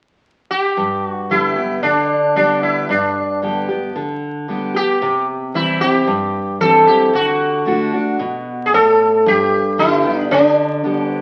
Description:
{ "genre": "country", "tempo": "113 BPM", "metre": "4/4", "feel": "straight", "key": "G major", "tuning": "A4 = 440 Hz", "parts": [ { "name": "sitar", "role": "melody", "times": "0.5-11.2 s", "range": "D4 to A4", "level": "-17 LUFS", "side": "equal", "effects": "none" }, { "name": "picked steel-string acoustic guitar", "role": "accompaniment", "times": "0.8-11.2 s", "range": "G2 to G4", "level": "-23 LUFS", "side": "equal", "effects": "none" } ], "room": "moderate large studio reverb, RT60 1.1 s", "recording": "very old 78 rpm record, vinyl crackle", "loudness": "-16 LUFS", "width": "mono", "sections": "0.8-9.3 A section; 9.3-11.2 B section", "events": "none", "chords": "0.0 N.C.; 0.8 G; 5.0 C; 7.1 D; 9.3 G" }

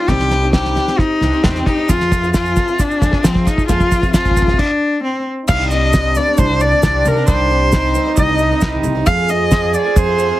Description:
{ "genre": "indie folk with a building arrangement", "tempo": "134 BPM", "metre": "4/4", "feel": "straight", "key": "unclear", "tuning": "A4 = 442 Hz", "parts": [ { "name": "warm cello", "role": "melody", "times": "0.0-10.4 s", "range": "C4 to F5", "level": "-17 LUFS", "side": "left 1 dB", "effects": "none" }, { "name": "fingerpicked steel-string acoustic guitar", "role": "accompaniment", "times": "0.0-1.9 s", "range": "G2 to G4", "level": "-24 LUFS", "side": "left 1 dB", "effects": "none" }, { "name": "picked twelve-string acoustic guitar", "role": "accompaniment", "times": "0.0-10.4 s", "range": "C3 to Ab4", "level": "-24 LUFS", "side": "left 4 dB", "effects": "lush chorus" }, { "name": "upright bass", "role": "bass", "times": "0.1-10.3 s", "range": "C2 to F3", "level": "-19 LUFS", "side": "equal", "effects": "none" }, { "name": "cloth-damped thuddy drum kit", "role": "drums", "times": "0.1-10.1 s", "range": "crash cymbal, kick drum, snare drum", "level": "-16 LUFS", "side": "equal", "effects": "none" }, { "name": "tube shaker", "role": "percussion", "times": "1.9-10.3 s", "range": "none", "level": "-31 LUFS", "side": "right 10 dB", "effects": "none" }, { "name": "clear French horn", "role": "second line", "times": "5.4-10.4 s", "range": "D4 to Ab4", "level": "-20 LUFS", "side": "right 5 dB", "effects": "none" } ], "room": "light reverb", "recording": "heavily compressed radio sound, multiband compression", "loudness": "-12 LUFS", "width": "side -15 dB against mid", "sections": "0.0-5.5 A section; 5.5-10.4 B section", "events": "build-up 0.0-5.5; drum fill 0.0-4.6; stop 4.6-5.5", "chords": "0.0 Cmadd9; 1.9 Fm; 5.5 Cmadd9; 9.1 Fm" }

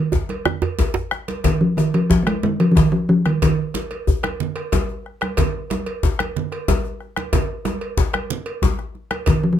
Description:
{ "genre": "west african traditional, West African drum ensemble", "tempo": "122 BPM (dotted quarters)", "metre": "12/8", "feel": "straight", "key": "unclear", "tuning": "A4 = 439 Hz", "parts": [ { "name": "talking drum", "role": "melody", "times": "0.0-4.7, 9.3-9.6 s", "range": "Eb3 to Bb3", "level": "-16 LUFS", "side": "equal", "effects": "none" }, { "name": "bombo", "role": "percussion", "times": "0.1-9.4 s", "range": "none", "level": "-21 LUFS", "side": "left 2 dB", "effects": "none" }, { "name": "djembe", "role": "percussion", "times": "0.1-9.4 s", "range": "none", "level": "-24 LUFS", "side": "left 4 dB", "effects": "none" }, { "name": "djembe", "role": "percussion", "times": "0.1-1.1 s", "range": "none", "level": "-22 LUFS", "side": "right 6 dB", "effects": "none" }, { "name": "congas", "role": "percussion", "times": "0.3-9.4 s", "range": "none", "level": "-27 LUFS", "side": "right 6 dB", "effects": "none" }, { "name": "cowbell", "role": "percussion", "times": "0.3-9.4 s", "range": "none", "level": "-29 LUFS", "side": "right 3 dB", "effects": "none" } ], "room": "light reverb", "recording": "close, detailed microphones", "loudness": "-18 LUFS", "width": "side -10 dB against mid", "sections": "0.0-1.4 A section; 1.4-9.6 B section", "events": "drum fill 0.0-1.4", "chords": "none" }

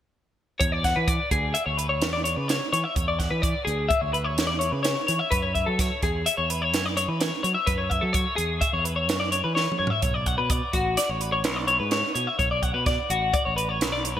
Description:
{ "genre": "math rock and midwest emo", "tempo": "127 BPM", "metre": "5/4", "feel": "straight", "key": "unclear", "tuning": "A4 = 440 Hz", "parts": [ { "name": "twelve-string electric guitar", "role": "arpeggios", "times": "0.6-14.2 s", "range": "F#4 to F#5", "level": "-24 LUFS", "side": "left 2 dB", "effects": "lush chorus, digital delay" }, { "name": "growling fingered electric bass", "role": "bass", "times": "0.6-14.2 s", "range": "A1 to F#3", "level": "-29 LUFS", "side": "right 1 dB", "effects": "overdrive" }, { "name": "compact cocktail drum kit", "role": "drums", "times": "0.6-14.2 s", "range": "hi-hat, kick drum, snare drum, toms", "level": "-27 LUFS", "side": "right 2 dB", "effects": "gated reverb" } ], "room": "moderate lush hall reverb, RT60 2.0 s, studio reverb", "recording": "bright 1980s-style digital production", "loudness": "-22 LUFS", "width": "side -10 dB against mid", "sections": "0.6-14.2 A section", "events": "drum fill 9.6-10.0", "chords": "0.6 E7(no3); 5.3 F#7(no3); 10.0 Bm9" }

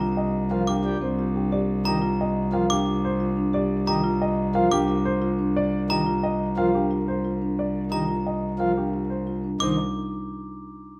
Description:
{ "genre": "classical, minimalist pattern music", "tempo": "178 BPM", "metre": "6/4", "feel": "straight", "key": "C minor", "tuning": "A4 = 440 Hz", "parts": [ { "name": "warm baby grand piano", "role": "melody", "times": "0.0-9.8 s", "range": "G4 to F5", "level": "-32 LUFS", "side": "equal", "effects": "none" }, { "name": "glockenspiel with brass mallets", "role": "arpeggios", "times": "0.0-9.8 s", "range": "Bb5 to D6", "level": "-34 LUFS", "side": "equal", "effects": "none" }, { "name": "marimba with medium mallets", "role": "arpeggios", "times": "0.0-9.8 s", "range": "C4 to Bb4", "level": "-31 LUFS", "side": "equal", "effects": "none" }, { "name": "rich cello", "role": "bass", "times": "0.0-9.8 s", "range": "C2", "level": "-29 LUFS", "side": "equal", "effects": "none" }, { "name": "pipe organ, principal chorus", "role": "accompaniment", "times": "0.5-9.8 s", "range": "Eb3 to G3", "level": "-30 LUFS", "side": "equal", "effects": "none" } ], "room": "moderate large studio reverb, RT60 1.2 s", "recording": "none", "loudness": "-24 LUFS", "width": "mono", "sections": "0.0-9.6 A section; 9.6-11.0 B section", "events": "none", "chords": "0.0 Cm9; 9.6 N.C." }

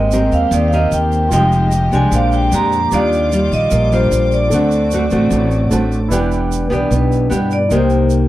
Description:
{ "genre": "bossa nova", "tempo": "150 BPM", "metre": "4/4", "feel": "straight", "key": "unclear", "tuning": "A4 = 440 Hz", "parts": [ { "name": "vibraphone with medium hard mallets", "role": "melody", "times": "0.0-8.1 s", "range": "B4 to Bb5", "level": "-18 LUFS", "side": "equal", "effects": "none" }, { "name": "nylon-string guitar", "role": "accompaniment", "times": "0.0-8.3 s", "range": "A2 to Bb4", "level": "-18 LUFS", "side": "left 1 dB", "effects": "none" }, { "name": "warm grand piano", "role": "accompaniment", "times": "0.0-8.3 s", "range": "C4 to D6", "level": "-25 LUFS", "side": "right 2 dB", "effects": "none" }, { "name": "warm studio string section", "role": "sustained chords", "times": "0.0-6.1 s", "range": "G3 to D6", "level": "-27 LUFS", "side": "equal", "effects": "none" }, { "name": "upright bass", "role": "bass", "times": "0.0-8.3 s", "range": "E1 to G2", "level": "-17 LUFS", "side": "equal", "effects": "none" }, { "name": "tube shaker", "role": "percussion", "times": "0.1-8.3 s", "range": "none", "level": "-32 LUFS", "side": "right 15 dB", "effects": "none" } ], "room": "little or no reverb", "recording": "dry, close 1970s-style studio recording", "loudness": "-12 LUFS", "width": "side -15 dB against mid", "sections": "0.0-6.1 A section; 6.1-8.3 B section", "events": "vibraphone solo 6.1-8.3", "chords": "0.0 Abmaj9; 1.3 Fm9; 2.1 Bb13; 2.9 Ebmaj9; 4.5 D7; 6.1 Em7; 7.7 Cm7" }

